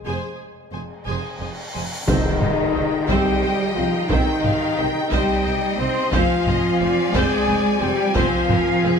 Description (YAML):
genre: cinematic, epic orchestral film score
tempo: 59 BPM (dotted quarters)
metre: 6/8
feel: straight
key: C minor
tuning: A4 = 440 Hz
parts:
  - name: rich studio violin section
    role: melody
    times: 0.0-9.0 s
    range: G5 to Ab5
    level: -32 LUFS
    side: left 4 dB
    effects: none
  - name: mellow French horn section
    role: sustained chords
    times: 0.0-9.0 s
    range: Ab3 to C5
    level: -24 LUFS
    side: left 4 dB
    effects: none
  - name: clear symphonic violin section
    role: second line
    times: 0.1-9.0 s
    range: Ab4 to G5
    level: -29 LUFS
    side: left 3 dB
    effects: none
  - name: rich symphonic viola section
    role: accompaniment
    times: 0.1-8.9 s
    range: C4 to C5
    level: -28 LUFS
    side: right 1 dB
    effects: none
  - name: rich symphonic cello section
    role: bass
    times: 0.1-9.0 s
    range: F2 to C4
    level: -25 LUFS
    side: right 2 dB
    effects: none
  - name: rich symphonic double bass section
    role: bass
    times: 0.1-8.9 s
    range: F1 to C2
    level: -28 LUFS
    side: right 4 dB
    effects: none
  - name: cymbal swell and impact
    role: sound effects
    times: 0.9-4.1 s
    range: none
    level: -33 LUFS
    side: equal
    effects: none
  - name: flute section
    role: second line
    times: 2.1-8.9 s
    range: Eb5 to C6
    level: -27 LUFS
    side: left 2 dB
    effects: none
  - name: warm trombone section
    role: sustained chords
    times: 2.1-9.0 s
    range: F3 to Eb4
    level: -31 LUFS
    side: right 6 dB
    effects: none
  - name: taiko ensemble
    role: drums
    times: 2.1-8.8 s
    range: none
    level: -24 LUFS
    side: equal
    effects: none
  - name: tam-tam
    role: percussion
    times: 2.1-4.7 s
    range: none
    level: -30 LUFS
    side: left 2 dB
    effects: none
  - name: timpani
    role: percussion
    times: 2.1-3.1 s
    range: C3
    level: -28 LUFS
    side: right 1 dB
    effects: none
room: moderate scoring stage reverb, RT60 1.7 s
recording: none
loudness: -18 LUFS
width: side -6 dB against mid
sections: 0.0-2.1 A section; 2.1-9.0 B section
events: cymbal swell 0.9-2.1; band accent 2.1-2.8; impact 2.1-4.1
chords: 0.0 Fm; 2.1 Cm; 6.1 Fmadd9